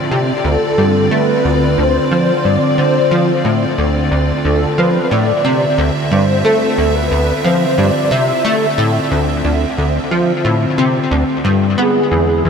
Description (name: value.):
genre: ambient, sequencer-driven space music.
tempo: 90 BPM.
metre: 4/4.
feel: straight.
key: D dorian.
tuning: A4 = 440 Hz.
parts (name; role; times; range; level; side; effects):
evolving wavetable pad; sustained chords; 0.0-12.5 s; D3 to E5; -18 LUFS; equal; ensemble chorus, built-in reverb.
plucky analog bass; riff; 0.1-12.5 s; D2 to B3; -15 LUFS; equal; ensemble chorus, ping-pong delay.
breathy flute-like synth lead; melody; 0.5-12.5 s; G#4 to E5; -17 LUFS; equal; ensemble chorus, ping-pong delay.
room: wet lush hall reverb, RT60 2.6 s.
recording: none.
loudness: -12 LUFS.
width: side -6 dB against mid.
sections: 0.0-12.5 A section.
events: none.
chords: 0.0 Dm7; 11.8 E.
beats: 0.45 | 1.11 1.78 2.45 3.11 | 3.78 4.45 5.11 5.78 | 6.45 7.11 7.78 8.45 | 9.11 9.78 10.45 11.11 | 11.78 12.45.